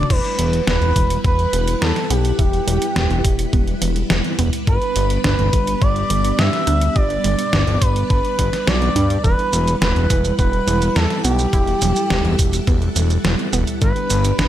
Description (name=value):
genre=synthwave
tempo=105 BPM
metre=4/4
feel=straight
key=E minor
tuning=A4 = 440 Hz
part: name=expressive synth lead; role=melody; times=0.0-14.5 s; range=G4 to E5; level=-22 LUFS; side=right 1 dB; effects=chorus, cassette tape, tape echo
part: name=string machine, full ensemble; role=sustained chords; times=0.0-14.5 s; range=G3 to F#5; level=-25 LUFS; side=equal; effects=ensemble chorus, sidechain pumping
part: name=fat analog bass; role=bass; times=0.0-14.5 s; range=E1 to G2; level=-19 LUFS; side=equal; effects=sidechain pumping
part: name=detuned 8-bit digital drum machine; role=drums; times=0.0-14.5 s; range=crash cymbal, hi-hat, shaker, snare drum, toms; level=-22 LUFS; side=equal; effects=gated reverb
part: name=wide unison pluck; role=arpeggios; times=0.1-14.5 s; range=D3 to G4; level=-28 LUFS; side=right 4 dB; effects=digital delay
part: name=electronic kick drum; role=drums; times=0.1-13.9 s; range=none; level=-18 LUFS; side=equal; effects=none
room=light reverb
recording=none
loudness=-15 LUFS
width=side -12 dB against mid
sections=0.1-14.5 A section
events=none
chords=0.1 Emadd9; 4.7 G; 9.2 Emadd9; 13.8 G